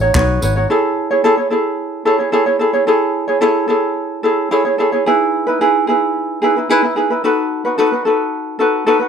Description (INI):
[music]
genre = acoustic pop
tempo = 110 BPM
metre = 4/4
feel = straight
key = unclear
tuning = A4 = 440 Hz
[part]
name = ukulele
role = accompaniment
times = 0.0-9.1 s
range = D#4 to C#5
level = -13 LUFS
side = equal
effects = none
[part]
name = vintage muted fingered electric bass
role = bass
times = 0.0-0.7 s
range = G#1 to B1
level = -17 LUFS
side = left 1 dB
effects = none
[part]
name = jazz brush drum kit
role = drums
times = 0.1-0.6 s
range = handclaps, kick drum, tambourine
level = -18 LUFS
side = equal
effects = none
[sound]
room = light reverb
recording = none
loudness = -13 LUFS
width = side -7 dB against mid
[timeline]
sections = 0.7-9.1 A section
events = none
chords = 0.0 Badd9; 0.7 Amaj7; 5.1 Emaj7; 7.2 B7